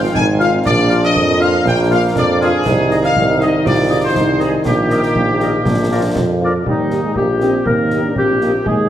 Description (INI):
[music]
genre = military-style march for wind band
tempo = 120 BPM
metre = 2/4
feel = straight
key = Eb major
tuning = A4 = 442 Hz
[part]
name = warm euphonium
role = second line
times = 0.0-8.9 s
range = F3 to F4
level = -21 LUFS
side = right 2 dB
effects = none
[part]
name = mellow trombone section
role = sustained chords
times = 0.0-6.4 s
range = Eb3 to Eb4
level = -22 LUFS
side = equal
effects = none
[part]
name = clear tuba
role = bass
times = 0.0-8.9 s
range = Ab1 to F2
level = -17 LUFS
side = right 2 dB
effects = none
[part]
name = clear trumpet section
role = melody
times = 0.1-8.5 s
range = G4 to Ab5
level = -19 LUFS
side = left 1 dB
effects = none
[part]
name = concert snare drum, concert bass drum and clash cymbals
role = drums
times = 0.1-8.8 s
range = none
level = -22 LUFS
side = left 1 dB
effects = none
[part]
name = mellow woodwind section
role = second line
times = 0.4-8.9 s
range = Eb4 to F5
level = -21 LUFS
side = left 2 dB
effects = none
[part]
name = dark French horn section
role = accompaniment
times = 0.4-8.5 s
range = F3 to G4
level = -25 LUFS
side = left 3 dB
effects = none
[sound]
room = wet recital hall reverb, RT60 1.5 s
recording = heavily compressed radio sound, multiband compression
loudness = -12 LUFS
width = side -11 dB against mid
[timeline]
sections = 0.0-6.7 A section; 6.7-8.9 B section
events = none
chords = 0.0 Fm/Ab; 0.6 Bb; 2.7 Ab/C; 4.7 Eb/Bb; 5.7 Bb; 6.7 Eb